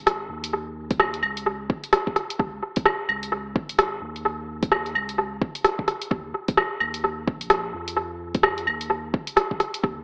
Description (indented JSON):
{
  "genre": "future garage",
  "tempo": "129 BPM",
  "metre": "4/4",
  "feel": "swing 61% on 16ths",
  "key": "unclear",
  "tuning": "A4 = 436 Hz",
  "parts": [
    { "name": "warm sub bass", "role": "bass", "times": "0.0-10.0 s", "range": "Ab1 to F2", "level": "-37 LUFS", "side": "equal", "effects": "sidechain pumping" },
    { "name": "deep house drum kit", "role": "drums", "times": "0.1-9.8 s", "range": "claves, hi-hat, rim click", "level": "-22 LUFS", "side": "equal", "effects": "studio reverb, analog delay" },
    { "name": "electronic kick drum", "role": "drums", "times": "0.9-9.9 s", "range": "none", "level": "-25 LUFS", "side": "equal", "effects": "studio reverb" }
  ],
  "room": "wet spring reverb, RT60 1.8 s",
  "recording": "echo-heavy mix, cassette tape, AM radio sound",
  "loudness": "-22 LUFS",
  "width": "side -25 dB against mid",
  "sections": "0.0-10.0 A section",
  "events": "none",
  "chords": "none"
}